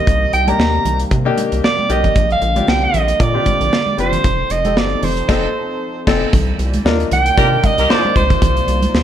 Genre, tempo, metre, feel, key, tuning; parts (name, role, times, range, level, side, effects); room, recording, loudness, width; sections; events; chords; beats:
early-eighties boogie funk; 115 BPM; 4/4; swing 56% on 16ths; C dorian; A4 = 435 Hz
mellow soprano saxophone; melody; 0.0-9.0 s; C5 to Bb5; -17 LUFS; right 3 dB; slapback echo
warm baby grand piano; accompaniment; 0.0-8.6 s; Bb3 to C5; -22 LUFS; left 6 dB
warm analog pad; sustained chords; 0.0-9.0 s; C3 to D5; -27 LUFS; left 2 dB; chorus
rubbery square bass; bass; 0.1-9.0 s; F1 to C3; -19 LUFS; equal
modern studio drum kit; drums; 0.1-9.0 s; crash cymbal, hi-hat, kick drum, snare drum; -18 LUFS; equal
congas; percussion; 0.1-9.0 s; -26 LUFS; right 3 dB
warm horn section; second line; 7.4-8.1 s; Bb3 to Bb4; -22 LUFS; left 3 dB
moderate recital hall reverb, RT60 1.5 s; -13 LUFS; side -10 dB against mid
0.0-6.3 A section; 6.3-9.0 B section
band accent 5.3-6.3
0.0 Cm7; 2.2 Bb6; 4.2 F7; 6.3 Cm11
| 0.07 0.59 1.11 1.64 | 2.16 2.68 3.20 3.72 | 4.24 4.77 5.29 5.81 | 6.33 6.85 7.38 7.90 | 8.42 8.94